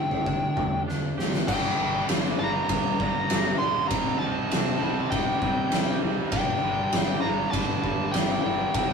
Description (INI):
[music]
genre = quiet-loud alternative rock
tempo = 99 BPM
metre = 4/4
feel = straight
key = G minor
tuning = A4 = 436 Hz
[part]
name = fuzz lead guitar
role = melody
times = 0.0-8.9 s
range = G5 to C6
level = -28 LUFS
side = equal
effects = distortion
[part]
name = twangy electric guitar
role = arpeggios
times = 0.0-1.5 s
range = D3 to G4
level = -38 LUFS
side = right 3 dB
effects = spring reverb
[part]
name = sludgy distorted guitar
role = riff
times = 0.0-8.9 s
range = G2 to Eb4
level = -34 LUFS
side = left 3 dB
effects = overdrive
[part]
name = fuzz picked electric bass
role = bass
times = 0.0-8.9 s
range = G1 to D3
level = -36 LUFS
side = equal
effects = overdrive
[part]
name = oversized low-tuned drum kit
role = drums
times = 0.1-8.9 s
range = crash cymbal, kick drum, ride cymbal, snare drum, toms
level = -26 LUFS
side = left 1 dB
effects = none
[part]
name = distorted electric guitar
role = riff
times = 1.5-8.9 s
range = G2 to G4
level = -36 LUFS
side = right 1 dB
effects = none
[part]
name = raw garage guitar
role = riff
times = 1.5-8.9 s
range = G2 to C4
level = -31 LUFS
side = right 4 dB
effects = overdrive
[sound]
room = moderate booth ambience, RT60 0.2 s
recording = rough rehearsal-room recording, warm saturation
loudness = -23 LUFS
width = side -5 dB against mid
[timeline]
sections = 0.0-1.5 A section; 1.5-8.9 B section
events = drum fill 0.9-1.5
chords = 0.0 Dsus4; 1.5 Gm; 3.9 Cm; 6.3 Gmadd9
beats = 0.27 0.88 | 1.49 2.09 2.70 3.30 | 3.91 4.51 5.12 5.72 | 6.33 6.93 7.54 8.15 | 8.75